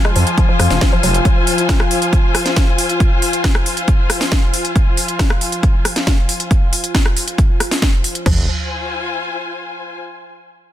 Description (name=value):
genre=driving peak-time techno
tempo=137 BPM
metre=4/4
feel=straight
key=F minor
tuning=A4 = 439 Hz
part: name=analog drone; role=drone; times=0.0-8.3 s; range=F3 to F4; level=-23 LUFS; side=left 1 dB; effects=chorus, sidechain pumping
part: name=techno drum kit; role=drums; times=0.0-8.2 s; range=hi-hat, rim click, snare drum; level=-19 LUFS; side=equal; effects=overdrive, sidechain pumping on hats, sidechain pumping on cymbals
part: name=dark studio string section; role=texture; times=0.0-10.0 s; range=F4 to Ab5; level=-23 LUFS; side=left 3 dB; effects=sidechain pumping
part: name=woody wave-folded pluck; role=riff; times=0.1-1.1, 8.3-8.5 s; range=F3 to Ab3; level=-23 LUFS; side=left 3 dB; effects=chorus, tube saturation, sidechain pumping, ping-pong delay
part: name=growling FM bass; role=bass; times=0.2-1.2, 8.3-8.5 s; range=F1 to F2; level=-16 LUFS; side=equal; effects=sidechain pumping
part: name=techno drum kit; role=drums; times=0.4-8.4 s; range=crash cymbal, kick drum, toms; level=-14 LUFS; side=equal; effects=overdrive
room=little or no reverb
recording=dense, heavily limited modern master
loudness=-13 LUFS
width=side -12 dB against mid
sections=0.0-8.3 A section; 8.3-10.0 B section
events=fade-out on string section 0.0-8.3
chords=0.0 Fm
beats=0.38 0.81 | 1.25 1.69 2.13 2.57 | 3.00 3.44 3.88 4.32 | 4.76 5.19 5.63 6.07 | 6.51 6.95 7.38 7.82 | 8.26 8.70 9.14 9.57